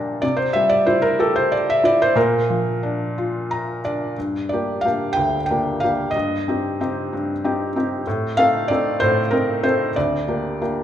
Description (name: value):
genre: classical, lyrical solo piano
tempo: 58-65 BPM (dotted quarters)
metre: 6/8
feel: rubato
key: Bb lydian, G minor from 4.2 s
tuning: A4 = 440 Hz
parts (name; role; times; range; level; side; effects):
- felt-muted upright piano; solo; 0.0-10.8 s; D2 to Bb5; -18 LUFS; equal; none
room: wet recital hall reverb, RT60 1.5 s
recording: recorded in a church or concert hall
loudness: -18 LUFS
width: side -10 dB against mid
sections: 0.0-4.2 A section; 4.2-10.8 B section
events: felt piano fill 3.1-4.2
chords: 0.2 C; 2.2 Bb; 4.2 Gm; 6.1 Cm/G; 8.1 Adim; 10.0 Gm/D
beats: | 0.23 1.18 | 2.15 3.15 | 4.17 5.17 | 6.15 7.12 | 8.06 9.00 | 9.96